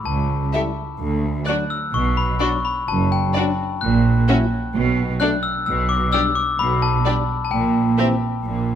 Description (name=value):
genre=cinematic, playful, whimsical film cue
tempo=129 BPM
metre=4/4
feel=straight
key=C major from 5.7 s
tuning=A4 = 440 Hz
part: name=glockenspiel with hard plastic mallets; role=melody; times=0.1-8.6 s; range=G5 to F#6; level=-23 LUFS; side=left 6 dB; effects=none
part: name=clear chamber double bass section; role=bass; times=0.1-8.8 s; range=F#1 to D2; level=-23 LUFS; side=right 3 dB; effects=none
part: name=rich studio cello section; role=bass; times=0.1-8.8 s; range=C#2 to B2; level=-23 LUFS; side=right 3 dB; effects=none
part: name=dark chamber violin section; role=melody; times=0.5-8.1 s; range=D5 to E5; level=-28 LUFS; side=left 4 dB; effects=none
part: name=rich chamber violin section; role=second line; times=0.5-8.1 s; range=F#4 to A4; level=-30 LUFS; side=left 3 dB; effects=none
part: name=rich chamber viola section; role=accompaniment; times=0.5-8.1 s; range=C4 to G4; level=-27 LUFS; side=right 1 dB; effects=none
part: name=mellow French horn section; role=sustained chords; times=0.5-8.1 s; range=E3 to E4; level=-29 LUFS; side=left 5 dB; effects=none
room=moderate scoring stage reverb, RT60 1.5 s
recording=close, detailed microphones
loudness=-17 LUFS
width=side -9 dB against mid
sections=0.0-8.8 A section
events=none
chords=0.1 A7/C#; 1.0 D; 1.9 Bm; 3.8 F#7/A#; 4.7 Bm7; 5.7 G/B; 7.5 C7/Bb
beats=| 0.06 0.53 1.00 1.47 | 1.94 2.41 2.88 3.35 | 3.81 4.28 4.74 5.20 | 5.67 6.13 6.59 7.05 | 7.51 7.98 8.45